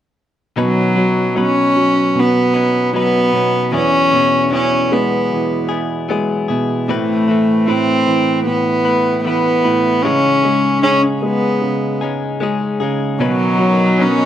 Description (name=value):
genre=pop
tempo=76 BPM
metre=4/4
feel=straight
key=unclear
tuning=A4 = 440 Hz
part: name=rich cello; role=melody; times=0.6-14.3 s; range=F#3 to C#4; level=-14 LUFS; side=equal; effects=slapback echo
part: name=warm baby grand piano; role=accompaniment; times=0.6-14.3 s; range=E2 to G#3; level=-18 LUFS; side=right 2 dB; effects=slapback echo
part: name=direct-recorded clean electric guitar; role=arpeggios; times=0.6-14.3 s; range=A2 to B4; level=-23 LUFS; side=left 6 dB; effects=slapback echo
part: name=rich studio string section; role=sustained chords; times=13.2-14.3 s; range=B2 to D#4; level=-21 LUFS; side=equal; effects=none
room=little or no reverb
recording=recorded outdoors, with no room sound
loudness=-13 LUFS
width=side -10 dB against mid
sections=0.6-14.3 A section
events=none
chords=0.6 Badd9; 3.7 Eadd9; 6.9 Amadd9; 10.0 C#madd9; 13.2 Badd9